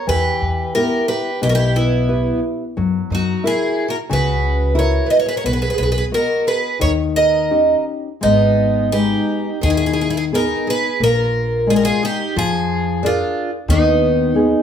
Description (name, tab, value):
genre	fado-style ballad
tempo	88 BPM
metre	4/4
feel	uneven beats, rubato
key	G# harmonic minor from 8.2 s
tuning	A4 = 440 Hz
part	picked twelve-string acoustic guitar	melody	0.0-14.6 s	D#4 to D#5	-19 LUFS	right 2 dB	none
part	picked twelve-string acoustic guitar	second line	0.0-14.6 s	B3 to B4	-24 LUFS	right 2 dB	none
part	nylon-string guitar	accompaniment	0.1-14.6 s	B2 to D#5	-20 LUFS	left 4 dB	none
part	upright bass	bass	0.1-14.5 s	G#1 to F#2	-20 LUFS	equal	none
room	moderate large studio reverb, RT60 0.8 s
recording	band playing live in one room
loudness	-15 LUFS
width	side -8 dB against mid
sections	0.0-8.2 A section; 8.2-14.6 B section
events	none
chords	0.1 Em; 2.8 F#7; 5.5 B; 6.8 D#7; 8.2 G#m; 11.0 A#7; 13.7 G#m/D#